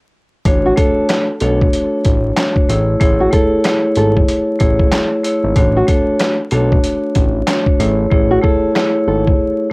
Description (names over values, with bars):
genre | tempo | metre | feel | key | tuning
hip hop, boom-bap hip-hop | 94 BPM | 4/4 | swing 61% on 16ths | unclear | A4 = 438 Hz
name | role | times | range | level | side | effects
vibraphone with medium hard mallets | accompaniment | 0.5-9.7 s | A3 to C#5 | -15 LUFS | equal | high-pass filter, low-pass filter, cassette tape
fat analog bass | bass | 0.5-9.3 s | G#1 to B1 | -17 LUFS | equal | none
trip hop sampler-style drum kit | drums | 0.5-9.4 s | handclaps, hi-hat, kick drum, snare drum | -15 LUFS | equal | cassette tape
nylon-string guitar | melody | 0.7-9.2 s | F#4 to A4 | -19 LUFS | right 1 dB | high-pass filter, low-pass filter, cassette tape
room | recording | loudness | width
light reverb | home recording on cassette, vinyl crackle | -12 LUFS | side -29 dB against mid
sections
0.5-9.7 A section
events
stop 0.0-0.5; hi-hats muted 8.1-9.7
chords
0.5 Dmaj7/A; 2.7 Amaj7; 5.6 Dmaj7/A; 7.8 Amaj7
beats
| 0.46 1.09 1.73 2.37 | 3.01 3.65 4.29 4.92 | 5.56 6.20 6.84 7.48 | 8.12 8.75 9.39